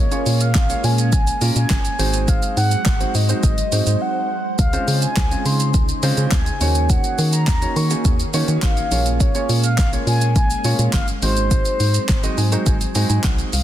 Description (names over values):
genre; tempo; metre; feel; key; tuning
dance-pop; 104 BPM; 4/4; straight; unclear; A4 = 442 Hz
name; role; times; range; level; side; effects
mellow horn-like synth lead; melody; 0.0-13.2 s; C5 to Db6; -25 LUFS; equal; chorus, ping-pong delay
dark baby grand piano; accompaniment; 0.0-13.6 s; Ab3 to Bb5; -26 LUFS; right 3 dB; none
soft string machine; sustained chords; 0.0-13.6 s; Db3 to C5; -29 LUFS; right 1 dB; ensemble chorus, sidechain pumping
organ-like FM bass; bass; 0.0-13.6 s; G1 to Eb3; -19 LUFS; equal; sidechain pumping
deep house drum kit; drums; 0.1-13.6 s; handclaps, hi-hat, kick drum, shaker, snare drum; -20 LUFS; equal; none
room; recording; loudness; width
light reverb; dense, heavily limited modern master; -16 LUFS; side -12 dB against mid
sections
0.0-13.6 A section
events
break 4.0-4.6; grand piano fill 12.1-13.6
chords
0.0 Bbm7; 2.0 Ab7; 4.6 Dbmaj7; 6.6 Ebm7; 8.9 Bbm7; 11.2 Ab7